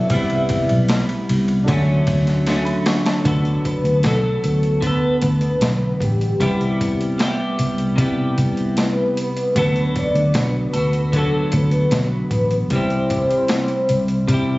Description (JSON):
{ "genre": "indie pop, bedroom pop", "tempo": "76 BPM", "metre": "4/4", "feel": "straight", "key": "D mixolydian", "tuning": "A4 = 441 Hz", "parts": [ { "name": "soft octave-layered synth lead", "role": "melody", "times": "0.0-14.6 s", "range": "G4 to E5", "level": "-22 LUFS", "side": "left 1 dB", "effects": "ensemble chorus, tape echo" }, { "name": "bright reed electric piano", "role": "accompaniment", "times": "0.0-14.6 s", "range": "G3 to C#6", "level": "-30 LUFS", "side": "right 2 dB", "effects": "fast tremolo" }, { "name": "clean electric guitar", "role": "accompaniment", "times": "0.0-14.6 s", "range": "C3 to A4", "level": "-22 LUFS", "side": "left 1 dB", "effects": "lush chorus, warbly pitch drift" }, { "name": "vintage muted fingered electric bass", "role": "bass", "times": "0.1-14.6 s", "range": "A1 to C3", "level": "-20 LUFS", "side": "equal", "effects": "none" }, { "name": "boom bap sampler-style drum kit", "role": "drums", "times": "0.1-14.5 s", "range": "hi-hat, kick drum, ride cymbal, snare drum", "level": "-24 LUFS", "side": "equal", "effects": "overdrive" } ], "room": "little or no reverb", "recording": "recorded on a phone in the room, studio reverb, compression, nothing above 7.9 kHz", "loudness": "-16 LUFS", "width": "side -20 dB against mid", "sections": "0.0-3.3 A section; 3.3-14.6 B section", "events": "drum fill 2.5-3.3", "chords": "0.1 Cmaj7; 1.7 Dmaj7; 3.3 D6; 6.4 Cmaj7; 9.6 D6; 12.7 C", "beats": "| 0.10 0.89 1.68 2.46 | 3.25 4.04 4.83 5.62 | 6.40 7.19 7.98 8.77 | 9.56 10.34 11.13 11.92 | 12.71 13.50 14.28" }